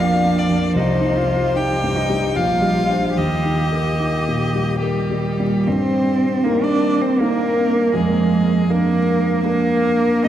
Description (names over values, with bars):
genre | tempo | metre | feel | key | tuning
classical, slow romantic movement for piano trio | 67-81 BPM | 3/4 | rubato | Eb major | A4 = 444 Hz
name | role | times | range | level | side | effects
clear violin | melody | 0.0-10.3 s | G4 to G5 | -24 LUFS | left 3 dB | none
rich cello | second line | 0.0-10.3 s | G3 to G4 | -20 LUFS | right 2 dB | none
warm concert grand piano | accompaniment | 0.0-10.3 s | Bb1 to D5 | -19 LUFS | equal | none
room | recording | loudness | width
wet cathedral reverb, RT60 5.8 s | in a vast, echoing space, vinyl crackle | -16 LUFS | side -11 dB against mid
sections
0.0-5.7 A section; 5.7-10.3 B section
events
none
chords
0.0 Bb; 0.8 Cm; 2.4 Bb69; 3.2 Eb; 5.7 Eb/G; 7.9 Bb7/F